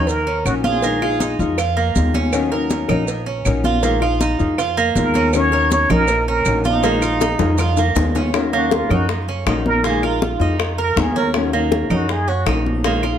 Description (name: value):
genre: latin, Cuban son and guajira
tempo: 160 BPM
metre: 4/4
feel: straight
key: Eb minor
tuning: A4 = 437 Hz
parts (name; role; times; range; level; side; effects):
- trumpet with plunger mute; melody; 0.0-1.4, 5.0-12.5 s; Eb4 to Db5; -21 LUFS; right 1 dB; none
- flamenco guitar; accompaniment; 0.0-13.2 s; Eb3 to Bb4; -22 LUFS; left 5 dB; none
- Cuban tres; arpeggios; 0.0-13.2 s; Bb3 to Bb4; -22 LUFS; right 6 dB; tape echo
- upright bass; bass; 0.0-13.2 s; Bb1 to Gb2; -22 LUFS; equal; none
- congas; percussion; 0.1-13.2 s; none; -24 LUFS; equal; none
- cowbell and bongos; percussion; 0.1-13.2 s; none; -25 LUFS; left 4 dB; none
- maracas; percussion; 0.1-8.3 s; none; -33 LUFS; right 7 dB; none
- claves; percussion; 0.5-13.2 s; none; -31 LUFS; right 1 dB; none
room: moderate studio reverb, RT60 0.8 s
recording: dark, warm production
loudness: -15 LUFS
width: side -9 dB against mid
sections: 0.0-8.3 A section; 8.3-13.2 B section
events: drum fill 6.8-8.3; muted trumpet solo 8.3-13.2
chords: 0.0 Ebm7; 0.8 Bb7sus4; 2.3 Ebm7; 3.8 Bb7sus4; 5.3 Ebm7; 6.8 Bb7sus4; 8.3 Ebm7; 9.8 Bb7sus4; 11.3 Ebm7